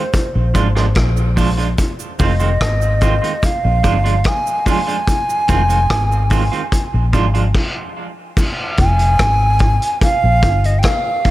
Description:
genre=dub reggae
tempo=73 BPM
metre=4/4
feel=straight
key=F dorian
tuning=A4 = 440 Hz
part: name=breathy hollow jazz flute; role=melody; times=0.0-11.3 s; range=C5 to Ab5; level=-19 LUFS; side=right 1 dB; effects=dub echo
part: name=clean electric guitar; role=accompaniment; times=0.0-7.4 s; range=Eb3 to F4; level=-23 LUFS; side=right 5 dB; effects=dub echo
part: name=vintage drum kit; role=drums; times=0.1-11.3 s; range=crash cymbal, hi-hat, kick drum, rim click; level=-18 LUFS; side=equal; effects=none
part: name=cabasa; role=percussion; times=0.1-8.6 s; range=none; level=-37 LUFS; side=right 10 dB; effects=none
part: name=vintage muted fingered electric bass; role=bass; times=0.4-10.8 s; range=F1 to Bb1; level=-15 LUFS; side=equal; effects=none
room=studio reverb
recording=none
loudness=-13 LUFS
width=side -16 dB against mid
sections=0.0-8.4 A section; 8.4-11.3 B section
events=stop 7.5-8.4; part muted 8.4-11.3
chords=0.1 Bb7; 1.8 Fm7; 3.4 Bb7 (rootless); 5.1 Fm7; 6.7 Bb7; 8.4 Fm; 10.0 Gm7

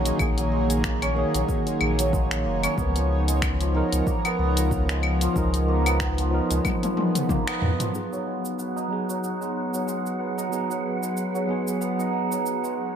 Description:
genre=organic downtempo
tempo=93 BPM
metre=4/4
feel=swing 56% on 16ths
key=G# dorian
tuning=A4 = 440 Hz
part: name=tine electric piano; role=accompaniment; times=0.0-13.0 s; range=D#3 to A#4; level=-29 LUFS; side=right 1 dB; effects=medium tremolo, sidechain pumping, ping-pong delay
part: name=airy breathy pad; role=sustained chords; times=0.0-13.0 s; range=E#3 to C#5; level=-31 LUFS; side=left 1 dB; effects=chorus, sidechain pumping
part: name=santur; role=arpeggios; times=0.0-13.0 s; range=E#3 to D#4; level=-28 LUFS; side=right 2 dB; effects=low-pass filter, ping-pong delay
part: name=warm sub bass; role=bass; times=0.0-7.7 s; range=E#1 to E#2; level=-25 LUFS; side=equal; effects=none
part: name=deep house drum kit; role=drums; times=0.1-12.8 s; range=cabasa, claves, finger snaps, hi-hat, toms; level=-29 LUFS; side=left 2 dB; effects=none
part: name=electronic kick drum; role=drums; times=0.2-7.4 s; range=none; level=-28 LUFS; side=equal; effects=none
part: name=wind-like tuned noise texture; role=texture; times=8.5-13.0 s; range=F#5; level=-38 LUFS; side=right 1 dB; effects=built-in reverb
room=light reverb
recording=none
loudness=-22 LUFS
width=side -8 dB against mid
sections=0.0-7.9 A section; 7.9-13.0 B section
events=drum fill 6.7-7.9; band accent 7.5-7.8; filter sweep on santur 7.9-13.0; filter sweep on analog synth pad 7.9-13.0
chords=0.0 F#69/A#; 2.8 C#13; 7.9 G#m7

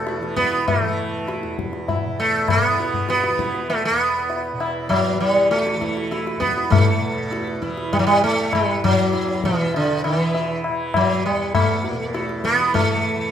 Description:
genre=indian classical, Hindustani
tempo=99 BPM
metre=5/4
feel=straight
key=E raga bhimpalasi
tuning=A4 = 440 Hz
part: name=sitar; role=melody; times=0.0-13.3 s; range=D3 to E4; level=-20 LUFS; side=right 1 dB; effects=none
part: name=tanpura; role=drone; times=0.0-13.3 s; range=E2 to E3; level=-29 LUFS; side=right 1 dB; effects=none
part: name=tabla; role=percussion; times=0.1-13.0 s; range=none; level=-23 LUFS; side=left 4 dB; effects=none
room=moderate recital hall reverb, RT60 1.4 s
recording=minimal, uncompressed stereo recording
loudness=-18 LUFS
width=side -9 dB against mid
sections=0.0-13.3 A section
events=none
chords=none

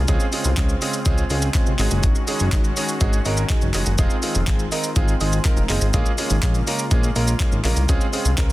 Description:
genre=dance-pop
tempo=123 BPM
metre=4/4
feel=straight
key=Db major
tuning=A4 = 440 Hz
part: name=warm analog pad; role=sustained chords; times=0.0-8.5 s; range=Db3 to Gb4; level=-30 LUFS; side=left 2 dB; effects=lush chorus, sidechain pumping
part: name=chorused synth bass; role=bass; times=0.0-8.5 s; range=F1 to Db2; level=-21 LUFS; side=equal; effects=sidechain pumping
part: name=warm concert grand piano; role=accompaniment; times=0.1-8.5 s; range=Ab3 to Bb5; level=-26 LUFS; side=right 3 dB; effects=sidechain pumping
part: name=jungle sampler-style drum kit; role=drums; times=0.1-8.5 s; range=handclaps, hi-hat, kick drum, shaker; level=-21 LUFS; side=equal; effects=none
room=little or no reverb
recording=dense, heavily limited modern master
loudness=-18 LUFS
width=side -17 dB against mid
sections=0.0-8.5 A section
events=grand piano fill 4.5-5.9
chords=0.1 Dbmaj7; 1.8 Ab7sus4; 4.0 Fm7; 5.9 Bbm7; 7.9 Dbmaj7

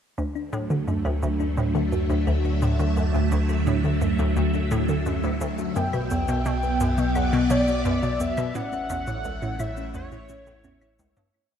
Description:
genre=ambient, sequencer-driven space music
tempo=86 BPM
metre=4/4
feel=straight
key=D major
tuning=A4 = 440 Hz
part: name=phased string machine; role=sustained chords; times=0.2-11.3 s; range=A2 to E5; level=-27 LUFS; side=equal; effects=ensemble chorus, phaser
part: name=thumb-piano-like synth pluck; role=arpeggios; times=0.2-11.3 s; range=B3 to E5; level=-32 LUFS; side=moving between left 6 dB and right 2 dB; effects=chorus, auto-pan, ping-pong delay
part: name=hollow square pluck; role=riff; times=0.2-11.3 s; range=C#2 to D3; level=-27 LUFS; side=equal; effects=chorus, ping-pong delay
part: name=warm sub bass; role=bass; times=0.2-11.3 s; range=A1 to D2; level=-27 LUFS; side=equal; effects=none
part: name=shaker and claves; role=percussion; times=0.2-11.3 s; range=none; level=-44 LUFS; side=left 2 dB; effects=overdrive, ping-pong delay
part: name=wind-like tuned noise texture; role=texture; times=0.9-11.4 s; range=E5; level=-42 LUFS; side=right 2 dB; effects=built-in reverb
part: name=pulse-width lead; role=melody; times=5.8-11.0 s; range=C#5 to G5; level=-29 LUFS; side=left 1 dB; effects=chorus, ping-pong delay
room=wet spring reverb, RT60 2.6 s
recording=echo-heavy mix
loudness=-22 LUFS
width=side -8 dB against mid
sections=0.2-11.3 A section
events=fade-in on synth texture 0.2-11.3; fade-in on drum 0.2-11.3; fade-out 7.6-11.3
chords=0.2 Dadd9; 5.8 Bm; 8.6 A

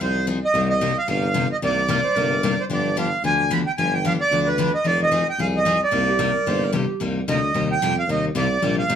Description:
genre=acoustic string swing (jazz manouche)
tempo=222 BPM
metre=4/4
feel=swing 57% on 8ths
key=C minor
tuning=A4 = 436 Hz
part: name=accordion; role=melody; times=0.0-9.0 s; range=B4 to B5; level=-21 LUFS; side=right 3 dB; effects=none
part: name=picked steel-string acoustic guitar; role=accompaniment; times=0.0-9.0 s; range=C3 to Ab4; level=-25 LUFS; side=left 4 dB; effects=none
part: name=mellow tuba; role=bass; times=0.0-9.0 s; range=F1 to F2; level=-25 LUFS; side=equal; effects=none
part: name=breathy clarinet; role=second line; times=1.9-2.5, 6.1-7.0 s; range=G4 to C5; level=-28 LUFS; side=right 2 dB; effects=none
room=moderate studio ambience, RT60 0.5 s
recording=band playing live in one room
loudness=-18 LUFS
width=side -8 dB against mid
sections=0.0-7.0 A section; 7.0-9.0 B section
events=accordion solo 7.0-9.0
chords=0.0 Fm7; 0.5 Cm9; 2.7 G7; 4.9 Fm7; 5.9 Cm9

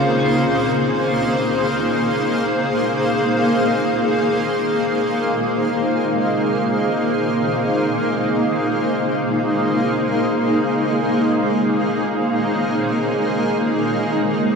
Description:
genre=ambient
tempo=free time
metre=none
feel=none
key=unclear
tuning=A4 = 440 Hz
part: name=granular cloud pad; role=sustained chords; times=0.0-14.6 s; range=Db3 to F5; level=-17 LUFS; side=equal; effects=built-in reverb
part: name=clean electric guitar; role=arpeggios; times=0.0-2.2 s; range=Bb3 to F4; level=-27 LUFS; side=right 1 dB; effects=diffuse ambient delay
part: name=organ-like drone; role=drone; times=5.2-14.6 s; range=Db3 to Ab3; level=-26 LUFS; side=right 2 dB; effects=ensemble chorus, built-in reverb, phaser
room=wet huge ambient reverb, RT60 8.4 s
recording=none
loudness=-17 LUFS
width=side -5 dB against mid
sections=0.0-4.7 A section; 4.7-14.6 B section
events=fade-out on synth drone 4.7-14.6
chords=0.0 Bbm7/Db

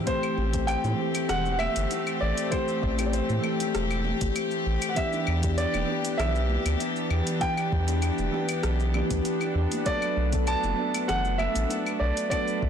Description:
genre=sunset chillout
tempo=98 BPM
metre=4/4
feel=straight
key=A dorian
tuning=A4 = 440 Hz
part: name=soft electric-piano-like synth keys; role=accompaniment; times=0.0-12.7 s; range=E3 to A4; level=-30 LUFS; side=left 2 dB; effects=chorus, auto-pan, ping-pong delay
part: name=rich chamber string section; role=sustained chords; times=0.0-12.7 s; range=E3 to G4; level=-32 LUFS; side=left 1 dB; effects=none
part: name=warm grand piano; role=melody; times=0.1-12.7 s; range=C5 to A5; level=-30 LUFS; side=right 2 dB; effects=ping-pong delay
part: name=deep house drum kit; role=drums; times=0.1-12.6 s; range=claves, hi-hat, rim click, shaker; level=-35 LUFS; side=left 2 dB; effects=overdrive, small room ambience
part: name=electronic kick drum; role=drums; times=0.1-12.7 s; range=none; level=-31 LUFS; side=equal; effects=overdrive, small room ambience
part: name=round analog bass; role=bass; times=0.4-12.7 s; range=E1 to A2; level=-27 LUFS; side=equal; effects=tube saturation
part: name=bongos and congas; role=percussion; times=0.4-12.4 s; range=none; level=-40 LUFS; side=right 5 dB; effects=none
room=light reverb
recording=blown-out, overdriven recording, overdrive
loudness=-24 LUFS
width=side -8 dB against mid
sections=0.1-12.7 A section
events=none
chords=0.1 Am7; 5.0 Em7; 9.9 Bm7

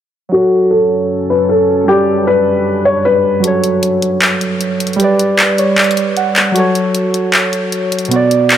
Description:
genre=hip hop, trap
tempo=154 BPM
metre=4/4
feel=half-time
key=F# phrygian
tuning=A4 = 441 Hz
part: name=felt-muted upright piano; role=melody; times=0.3-3.4 s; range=F#4 to C#5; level=-12 LUFS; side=left 2 dB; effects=low-pass filter
part: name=muted felt-like synth keys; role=accompaniment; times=0.3-8.6 s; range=B2 to F#5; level=-14 LUFS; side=right 2 dB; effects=chorus, low-pass filter
part: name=deep dark ambient pad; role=sustained chords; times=0.7-3.4 s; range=F#2 to B4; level=-22 LUFS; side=equal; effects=chorus, built-in reverb, low-pass filter
part: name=trap drum kit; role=drums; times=3.4-8.6 s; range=handclaps, hi-hat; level=-15 LUFS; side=left 1 dB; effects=none
room=light reverb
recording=none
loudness=-11 LUFS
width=side -10 dB against mid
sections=0.3-3.4 A section; 3.4-8.6 B section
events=filter sweep 0.3-3.4; kick muted 3.4-8.6; synth keys fill 5.4-6.6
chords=0.3 F#m; 1.9 G; 3.4 F#m; 5.0 G; 6.6 F#m

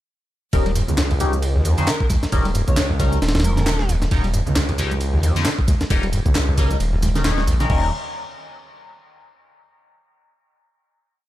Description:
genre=breakbeat, breaks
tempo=134 BPM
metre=4/4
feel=swing 57% on 16ths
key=unclear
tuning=A4 = 435 Hz
part: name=screaming distorted acid line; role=riff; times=0.5-7.9 s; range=Eb2 to G3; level=-23 LUFS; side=equal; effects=distortion, chorus
part: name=band-passed chord stab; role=stabs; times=0.5-7.9 s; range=G3 to Db5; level=-27 LUFS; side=left 3 dB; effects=phaser, dub echo
part: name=phased detuned saw bass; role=bass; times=0.5-7.9 s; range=Eb1 to Eb2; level=-21 LUFS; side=equal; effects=phaser
part: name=breakbeat sampler-style drum kit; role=drums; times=0.5-7.8 s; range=crash cymbal, kick drum, ride cymbal, snare drum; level=-22 LUFS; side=equal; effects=none
part: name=garage drum kit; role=drums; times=0.5-7.7 s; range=handclaps, hi-hat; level=-30 LUFS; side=equal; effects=none
part: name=congas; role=percussion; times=0.9-7.5 s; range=none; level=-29 LUFS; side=right 4 dB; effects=none
part: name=airy dreamy lead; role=melody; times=1.9-3.9 s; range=Bb4 to Db5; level=-32 LUFS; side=equal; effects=chorus, telephone sound, cassette tape, dub echo
room=little or no reverb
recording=none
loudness=-17 LUFS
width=side -14 dB against mid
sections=0.5-7.7 drop; 7.7-9.5 final chord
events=drop 0.5-7.7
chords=0.5 Eb7

